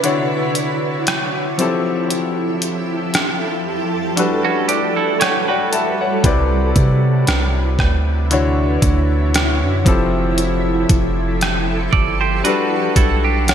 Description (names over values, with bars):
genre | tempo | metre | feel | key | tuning
contemporary R&B | 58 BPM | 4/4 | swing 54% on 16ths | unclear | A4 = 440 Hz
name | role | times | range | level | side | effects
clear concert grand piano | accompaniment | 0.0-13.5 s | C3 to A5 | -20 LUFS | left 3 dB | none
granular cloud pad | sustained chords | 0.0-13.5 s | C3 to F#5 | -22 LUFS | right 2 dB | built-in reverb, ensemble chorus, sidechain pumping
detuned 8-bit digital drum machine | drums | 0.0-13.5 s | hi-hat, kick drum, rim click | -18 LUFS | right 1 dB | gated reverb
clean electric guitar | arpeggios | 4.4-13.5 s | Db4 to D5 | -20 LUFS | right 9 dB | ping-pong delay
long sustained 808-style bass | bass | 6.2-13.5 s | F1 to C3 | -18 LUFS | right 1 dB | none
room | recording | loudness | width
moderate lush hall reverb, RT60 2.8 s | bright 1980s-style digital production | -15 LUFS | side -8 dB against mid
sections
0.0-13.5 A section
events
break 0.0-6.2; grand piano fill 4.2-6.2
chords
0.0 Dmaj9; 1.6 Fmaj9; 4.2 Gmaj9; 6.2 Cmaj9; 8.3 Dmaj9; 9.9 Fmaj9; 12.4 Gmaj9